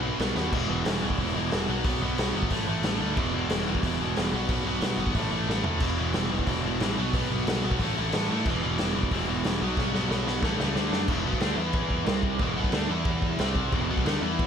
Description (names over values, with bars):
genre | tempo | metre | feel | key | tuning
punk rock | 182 BPM | 4/4 | straight | unclear | A4 = 441 Hz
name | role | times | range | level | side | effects
biting overdriven guitar | riff | 0.0-14.5 s | E2 to E4 | -30 LUFS | left 15 dB | none
cranked stack guitar | riff | 0.0-14.5 s | E2 to E4 | -30 LUFS | right 15 dB | overdrive
fuzz picked electric bass | bass | 0.0-14.5 s | E1 to A2 | -32 LUFS | equal | overdrive
raw garage drum kit | drums | 0.2-14.5 s | crash cymbal, hi-hat, kick drum, snare drum, toms | -29 LUFS | equal | none
room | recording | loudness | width
light reverb | none | -24 LUFS | side -7 dB against mid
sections
0.5-11.1 A section; 11.1-14.5 B section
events
drum fill 0.4, 5.5-5.8, 9.8-11.1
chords
0.0 B; 0.5 E5; 1.7 B5; 2.5 A5; 3.2 E5; 4.3 B5; 5.2 A5; 5.8 E5; 7.0 B5; 7.8 A5; 8.5 E5; 9.6 B5; 10.4 A; 10.8 D; 11.1 E5; 12.1 C5; 12.4 E5; 13.4 C5; 13.7 E5